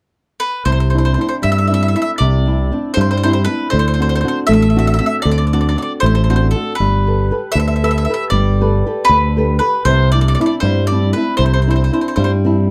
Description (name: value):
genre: italian folk, Italian serenade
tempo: 78 BPM (dotted quarters)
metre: 6/8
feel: straight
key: C major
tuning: A4 = 440 Hz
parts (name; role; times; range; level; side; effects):
- mandolin; melody; 0.4-12.3 s; A4 to E5; -21 LUFS; equal; none
- flamenco guitar; accompaniment; 0.7-12.7 s; C3 to B4; -20 LUFS; equal; none
- fingered electric bass; bass; 0.7-12.7 s; G1 to G2; -17 LUFS; equal; none
room: moderate small room reverb, RT60 0.5 s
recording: dark, warm production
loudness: -15 LUFS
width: mono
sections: 0.7-12.7 A section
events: none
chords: 0.0 N.C.; 0.7 Cadd9; 3.7 D7; 6.8 Gadd9; 9.9 Cadd9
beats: | 0.66 1.44 | 2.21 2.98 | 3.74 4.50 | 5.26 6.04 | 6.81 7.58 | 8.35 9.11 | 9.87 10.63 | 11.39 12.16